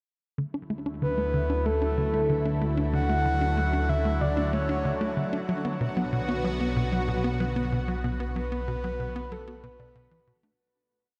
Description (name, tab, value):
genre	ambient, sequencer-driven space music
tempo	94 BPM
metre	4/4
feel	straight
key	B minor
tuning	A4 = 439 Hz
part	lush unison pad	sustained chords	0.6-10.6 s	D3 to F#4	-35 LUFS	equal	chorus, phaser, shimmer reverb
part	warbly dusty pluck	arpeggios	0.4-10.6 s	A3 to F#5	-43 LUFS	equal	none
part	tight sequencer bass	riff	0.4-10.5 s	B2 to D4	-33 LUFS	equal	shimmer reverb, tape echo
part	analog drone	bass	1.0-10.6 s	B1 to D2	-32 LUFS	equal	chorus, tube saturation
part	bubbling stepped-filter texture	texture	1.9-10.6 s	F#4 to F#5	-47 LUFS	equal	none
part	breathy flute-like synth lead	melody	1.0-10.3 s	A4 to F#5	-33 LUFS	equal	chorus, shimmer reverb, tape echo
room	moderate huge ambient reverb, RT60 8.0 s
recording	none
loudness	-27 LUFS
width	mono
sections	0.4-10.6 A section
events	filter sweep on analog synth bass 0.4-10.6; fade-out 7.2-10.6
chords	0.4 Dadd9; 5.5 Bm